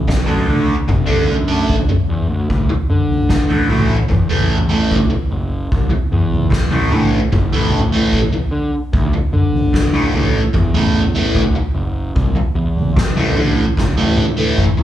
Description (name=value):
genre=psychedelic rock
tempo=74 BPM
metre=4/4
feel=straight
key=unclear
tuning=A4 = 441 Hz
part: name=fuzz picked electric bass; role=bass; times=0.0-14.5 s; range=F#1 to D3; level=-20 LUFS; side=equal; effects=overdrive
part: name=fuzz guitar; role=riff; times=0.1-14.8 s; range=A2 to D4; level=-18 LUFS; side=right 1 dB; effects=distortion, phaser
part: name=soft-mallet drum kit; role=drums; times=0.1-14.8 s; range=kick drum, snare drum, toms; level=-16 LUFS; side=equal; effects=none
room=moderate large studio reverb, RT60 1.4 s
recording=band playing live in one room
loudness=-13 LUFS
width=side -12 dB against mid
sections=0.0-14.8 A section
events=drum fill 13.8-14.8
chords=0.0 D; 2.5 A5